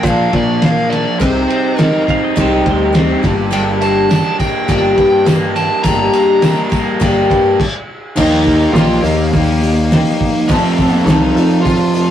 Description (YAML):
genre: folk rock and heartland rock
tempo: 103 BPM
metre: 4/4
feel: straight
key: unclear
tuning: A4 = 440 Hz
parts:
  - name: smooth overdriven lead guitar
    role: melody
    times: 0.0-12.1 s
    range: Bb3 to Bb5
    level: -18 LUFS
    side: right 1 dB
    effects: none
  - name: picked twelve-string acoustic guitar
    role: accompaniment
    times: 0.0-12.1 s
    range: G2 to Bb4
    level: -16 LUFS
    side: left 2 dB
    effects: none
  - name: crunchy overdriven guitar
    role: riff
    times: 0.0-12.1 s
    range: F2 to G4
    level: -18 LUFS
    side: right 1 dB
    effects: none
  - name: picked electric bass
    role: bass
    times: 0.0-12.1 s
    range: G1 to Bb2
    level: -19 LUFS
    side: equal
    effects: none
  - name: cloth-damped thuddy drum kit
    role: drums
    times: 0.0-12.1 s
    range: crash cymbal, hi-hat, kick drum, ride cymbal, snare drum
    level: -17 LUFS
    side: equal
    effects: none
  - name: pedal steel guitar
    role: second line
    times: 2.1-3.5 s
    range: G4 to F5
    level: -25 LUFS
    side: right 5 dB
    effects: none
  - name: tambourine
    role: percussion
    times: 3.5-7.4 s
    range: none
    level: -38 LUFS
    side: right 7 dB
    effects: none
room: moderate small room reverb, RT60 0.5 s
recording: rough rehearsal-room recording, warm saturation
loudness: -11 LUFS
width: side -10 dB against mid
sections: 0.0-8.2 A section; 8.2-12.1 B section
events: stop 7.6-8.2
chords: 0.0 Bb; 1.2 Cm; 3.2 Gm; 8.2 Ebadd9; 10.5 F